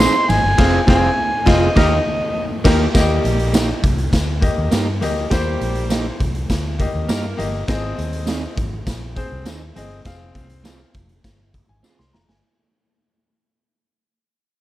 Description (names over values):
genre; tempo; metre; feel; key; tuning
uptempo 1960s-style soul; 101 BPM; 4/4; straight; Eb major; A4 = 440 Hz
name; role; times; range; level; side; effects
overdriven harmonica; melody; 0.0-2.6 s; Eb5 to C6; -19 LUFS; right 1 dB; none
bright concert grand piano; accompaniment; 0.0-12.6 s; Bb3 to C6; -24 LUFS; left 4 dB; none
electric guitar at the edge of break-up; stabs; 0.0-12.0 s; Bb3 to Ab4; -23 LUFS; right 4 dB; none
vintage muted fingered electric bass; bass; 0.0-12.4 s; F1 to G2; -22 LUFS; equal; none
raw garage drum kit; drums; 0.0-12.4 s; crash cymbal, hi-hat, kick drum, ride cymbal, snare drum; -20 LUFS; equal; none
congas; percussion; 0.0-12.3 s; none; -33 LUFS; right 4 dB; none
tambourine; percussion; 0.0-12.0 s; none; -34 LUFS; left 8 dB; none
clear saxophone section; second line; 1.8-7.5 s; G3 to Bb4; -28 LUFS; right 3 dB; none
room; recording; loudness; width
light reverb, small room ambience; none; -16 LUFS; side -15 dB against mid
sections
0.0-2.9 A section; 2.9-12.4 B section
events
band accent 0.6-2.9; fade-out 2.9-12.4; drum fill 11.8-12.4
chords
0.0 Ab; 0.6 Fm; 1.8 Eb; 7.7 Ab; 10.1 Fm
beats
0.00 | 0.59 1.18 1.77 2.36 | 2.95 3.54 4.13 4.72 | 5.31 5.90 6.50 7.09 | 7.68 8.28 8.87 9.46 | 10.05 10.65 11.24 11.84